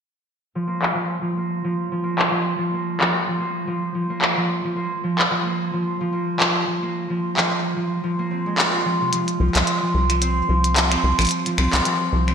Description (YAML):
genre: IDM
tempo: 110 BPM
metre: 4/4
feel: swing 56% on 16ths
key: F minor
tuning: A4 = 439 Hz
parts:
  - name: concert harp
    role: arpeggios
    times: 0.6-12.3 s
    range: C3 to F4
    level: -22 LUFS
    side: right 1 dB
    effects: low-pass filter, ping-pong delay
  - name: glitchy drum kit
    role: drums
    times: 0.8-12.3 s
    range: finger snaps, handclaps, hi-hat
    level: -22 LUFS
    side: equal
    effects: low-pass filter on snare, low-pass filter on hats, low-pass filter on room, gated reverb
  - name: deep acid bass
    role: bass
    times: 9.4-12.3 s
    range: Bb1 to C2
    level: -20 LUFS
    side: left 1 dB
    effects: none
room: wet lush hall reverb, RT60 2.1 s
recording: bright 1980s-style digital production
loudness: -19 LUFS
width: side -7 dB against mid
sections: 0.4-12.3 A section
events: filter sweep on drum 0.4-12.3; filter sweep on harp 0.4-12.3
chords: 0.4 Fsus4; 4.8 Bb5; 9.1 Csus4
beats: | 0.40 0.94 1.49 2.04 | 2.58 3.13 3.67 4.22 | 4.76 5.31 5.85 6.40 | 6.95 7.49 8.04 8.58 | 9.13 9.67 10.22 10.76 | 11.31 11.85